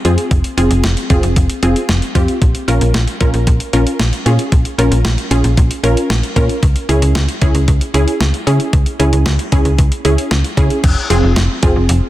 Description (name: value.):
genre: synth-pop.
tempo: 114 BPM.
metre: 4/4.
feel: straight.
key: unclear.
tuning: A4 = 440 Hz.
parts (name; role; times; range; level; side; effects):
wide unison pluck; accompaniment; 0.0-11.8 s; C4 to Bb4; -17 LUFS; equal; none.
slap-like FM bass; bass; 0.0-12.0 s; F1 to Db3; -14 LUFS; equal; none.
clean 12-bit digital drum machine; drums; 0.0-12.0 s; crash cymbal, hi-hat, kick drum, snare drum; -16 LUFS; equal; none.
room: light reverb.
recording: dense, heavily limited modern master.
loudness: -11 LUFS.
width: side -15 dB against mid.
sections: 0.0-10.8 A section; 10.8-12.1 B section.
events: none.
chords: 0.0 Fm; 2.4 Bbm; 6.6 Dbm; 10.8 Fm.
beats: | 0.31 0.84 1.36 1.89 | 2.42 2.94 3.47 4.00 | 4.52 5.05 5.57 6.10 | 6.63 7.15 7.68 8.21 | 8.73 9.26 9.79 10.31 | 10.84 11.36 11.89.